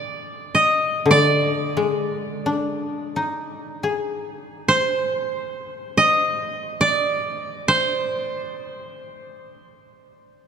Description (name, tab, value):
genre	japanese traditional, Japanese chamber music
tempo	free time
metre	none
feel	none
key	unclear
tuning	A4 = 439 Hz
part	koto	melody	0.0-10.5 s	C5 to Eb5	-20 LUFS	right 2 dB	none
part	koto	accompaniment	0.0-6.5 s	D3 to Ab4	-22 LUFS	left 3 dB	none
room	wet cathedral reverb, RT60 5.4 s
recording	minimal, uncompressed stereo recording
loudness	-19 LUFS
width	side -7 dB against mid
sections	0.0-10.5 A section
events	none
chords	none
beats	free time